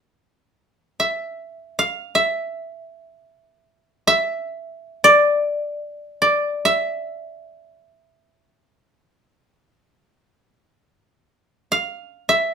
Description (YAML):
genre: japanese traditional, Japanese chamber music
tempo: free time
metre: none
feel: none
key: unclear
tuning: A4 = 440 Hz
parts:
  - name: koto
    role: solo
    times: 1.0-12.5 s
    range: D5 to F5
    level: -17 LUFS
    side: equal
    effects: none
room: light reverb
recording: none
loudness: -18 LUFS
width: side -6 dB against mid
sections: 0.0-12.5 A section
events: none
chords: none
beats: free time